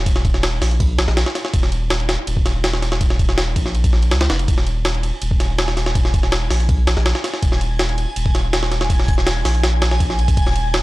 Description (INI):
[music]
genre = drum and bass, jungle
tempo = 163 BPM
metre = 4/4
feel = straight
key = unclear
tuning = A4 = 442 Hz
[part]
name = saturated sub bass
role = bass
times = 0.0-10.8 s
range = Eb1 to Db2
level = -19 LUFS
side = equal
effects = none
[part]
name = jungle sampler-style drum kit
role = drums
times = 0.1-10.8 s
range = hi-hat, kick drum, ride cymbal, snare drum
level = -18 LUFS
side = equal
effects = none
[part]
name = backwards swelling texture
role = texture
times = 5.2-10.8 s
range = Ab5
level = -29 LUFS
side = right 1 dB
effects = built-in reverb
[sound]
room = little or no reverb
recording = dry, gritty hardware recording, cassette tape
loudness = -16 LUFS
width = side -19 dB against mid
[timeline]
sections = 0.0-10.8 A section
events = none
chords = 0.0 N.C.; 4.5 Eb5